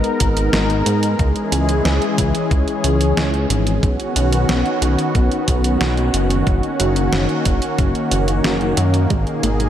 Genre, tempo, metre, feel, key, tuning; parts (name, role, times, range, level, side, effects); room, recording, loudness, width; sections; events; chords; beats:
synthwave; 91 BPM; 4/4; straight; A4 = 439 Hz
lush unison pad; sustained chords; 0.0-9.7 s; B2 to A#4; -19 LUFS; equal; chorus, sidechain pumping
chorused synth bass; bass; 0.0-9.7 s; F#1 to G#2; -18 LUFS; equal
clean 12-bit digital drum machine; drums; 0.0-9.7 s; hi-hat, snare drum; -24 LUFS; right 1 dB
electronic kick drum; drums; 0.2-9.2 s; -20 LUFS; equal
wide unison pluck; arpeggios; 9.1-9.7 s; G#3 to A#3; -25 LUFS; right 3 dB; analog delay
moderate plate reverb, RT60 3.0 s; dreamy mix soaked in reverb; -15 LUFS; side -10 dB against mid
0.0-9.7 A section
0.0 G#madd9; 1.2 C#m; 3.8 Badd9; 6.5 F#6; 9.1 G#madd9
0.53 | 1.19 1.85 2.51 3.17 | 3.83 4.49 5.15 5.81 | 6.47 7.13 7.79 8.45 | 9.11